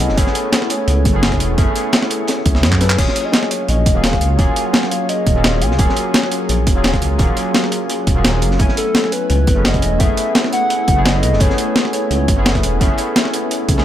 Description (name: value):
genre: liquid drum and bass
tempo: 171 BPM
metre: 4/4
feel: straight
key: unclear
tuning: A4 = 439 Hz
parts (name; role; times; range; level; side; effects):
- hollow clarinet-like synth lead; melody; 0.0-6.1, 8.8-12.6 s; A4 to Ab5; -22 LUFS; left 1 dB; chorus, digital delay
- overdriven tine electric piano; accompaniment; 0.0-13.8 s; Gb3 to Ab5; -21 LUFS; equal; analog chorus, ping-pong delay
- glassy FM pad; sustained chords; 0.0-13.8 s; Gb3 to Ab5; -25 LUFS; left 1 dB; ensemble chorus, built-in reverb, sidechain pumping
- dark detuned saw bass; bass; 0.0-13.8 s; Eb1 to Gb2; -17 LUFS; equal; tube saturation
- breakbeat sampler-style drum kit; drums; 0.0-13.8 s; crash cymbal, handclaps, hi-hat, snare drum; -18 LUFS; equal; none
- crunchy breakbeat drum kit; drums; 0.0-13.8 s; hi-hat, snare drum; -25 LUFS; equal; high-pass filter on hats, high-pass filter on snare, high-pass filter on room
- electronic kick drum; drums; 0.2-13.8 s; none; -17 LUFS; equal; overdrive
room: light reverb, digital ambience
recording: none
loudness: -13 LUFS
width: side -11 dB against mid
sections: 0.0-13.8 A section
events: drum fill 2.7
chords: 0.0 Gbm11; 3.0 Ebm11; 8.6 Gbm11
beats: | 0.18 0.53 0.88 1.23 | 1.58 1.93 2.28 2.63 | 2.98 3.33 3.69 4.04 | 4.39 4.74 5.09 5.44 | 5.79 6.14 6.49 6.84 | 7.19 7.54 7.90 8.25 | 8.60 8.95 9.30 9.65 | 10.00 10.35 10.70 11.05 | 11.40 11.76 12.11 12.46 | 12.81 13.16 13.51